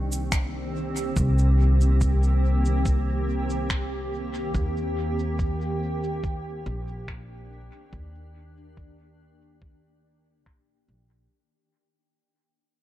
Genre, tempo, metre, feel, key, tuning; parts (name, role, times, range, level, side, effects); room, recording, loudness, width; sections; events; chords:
ambient dub; 71 BPM; 4/4; straight; A4 = 444 Hz
granular cloud pad; sustained chords; 0.0-11.3 s; Eb3 to G4; -30 LUFS; right 1 dB; built-in reverb
upright bass; bass; 0.0-11.3 s; Bb1 to Eb2; -24 LUFS; equal
electronic cabasa and finger snaps; drums; 0.1-11.3 s; -33 LUFS; equal; overdrive, low-pass filter on perc, low-pass filter on snare, low-pass filter on room, dub echo
electronic kick drum; drums; 0.3-10.6 s; -27 LUFS; equal
little or no reverb; -22 LUFS; side -14 dB against mid
0.0-11.3 A section
fade-out 0.0-11.3
0.0 Cm7; 4.5 Ebmaj7